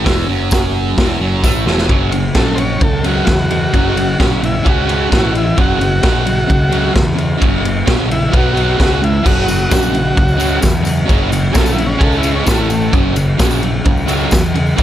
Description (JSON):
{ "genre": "garage rock duo or trio", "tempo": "130 BPM", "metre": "4/4", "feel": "straight", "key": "unclear", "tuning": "A4 = 443 Hz", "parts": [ { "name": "fuzz guitar", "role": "riff", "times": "0.0-14.8 s", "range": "E2 to C#4", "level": "-17 LUFS", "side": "right 1 dB", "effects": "distortion" }, { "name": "growling picked electric bass", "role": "bass", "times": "0.0-14.8 s", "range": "E1 to E2", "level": "-19 LUFS", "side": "equal", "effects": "overdrive, tube saturation" }, { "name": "raw garage drum kit", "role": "drums", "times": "0.1-14.8 s", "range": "crash cymbal, hi-hat, kick drum, ride cymbal, snare drum", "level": "-15 LUFS", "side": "equal", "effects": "none" }, { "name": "tambourine", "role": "percussion", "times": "0.5-1.5, 9.3-14.8 s", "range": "none", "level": "-30 LUFS", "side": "left 4 dB", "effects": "none" }, { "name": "overdriven combo organ", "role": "melody", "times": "2.4-12.9 s", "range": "A3 to C#5", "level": "-19 LUFS", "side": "equal", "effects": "none" } ], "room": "light reverb, small room ambience", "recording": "none", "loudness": "-11 LUFS", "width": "side -12 dB against mid", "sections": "0.0-1.9 A section; 1.9-14.8 B section", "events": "drum fill 1.4-1.9; transistor combo organ solo 1.9-14.8", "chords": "0.0 Esus24; 1.9 F#; 4.7 C#5; 5.1 A5; 5.6 F#; 8.3 B5; 8.8 C#5; 9.3 F#; 12.0 C#5; 12.5 A5; 12.9 F#", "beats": "| 0.05 0.51 0.97 1.43 | 1.89 2.35 2.81 3.27 | 3.73 4.19 4.65 5.11 | 5.57 6.03 6.49 6.95 | 7.41 7.88 8.34 8.80 | 9.26 9.72 10.18 10.64 | 11.10 11.56 12.02 12.48 | 12.94 13.40 13.86 14.32 | 14.78" }